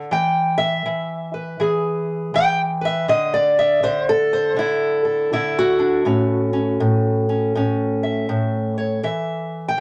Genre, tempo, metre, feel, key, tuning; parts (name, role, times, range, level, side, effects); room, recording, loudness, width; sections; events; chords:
acoustic country blues, solo or duo; 81 BPM; 4/4; swing 63% on 8ths; A major; A4 = 440 Hz
fingerpicked steel-string acoustic guitar; solo; 0.0-9.8 s; A2 to G5; -20 LUFS; equal
moderate studio ambience, RT60 0.5 s; -20 LUFS; mono
0.0-9.8 A section
0.1 E; 3.1 D5; 6.1 A; 9.0 N.C.